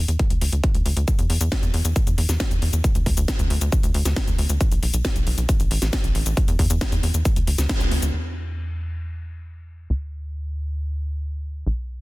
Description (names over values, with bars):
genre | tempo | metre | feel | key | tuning
uplifting trance | 136 BPM | 4/4 | straight | unclear | A4 = 440 Hz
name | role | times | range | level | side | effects
tight sequencer bass | bass | 0.0-12.0 s | A1 to E2 | -22 LUFS | equal | sidechain pumping
techno drum kit | drums | 0.1-8.2 s | crash cymbal, hi-hat, shaker, snare drum | -28 LUFS | left 1 dB | low-pass filter on hats, small room ambience, low-pass filter on perc, low-pass filter on snare, low-pass filter on cymbals
electronic kick drum | drums | 0.2-7.8 s | none | -21 LUFS | equal | small room ambience
room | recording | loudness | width
little or no reverb | dense, heavily limited modern master | -20 LUFS | side -21 dB against mid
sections
0.0-8.1 A section; 8.1-12.0 B section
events
band accent 7.7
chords
none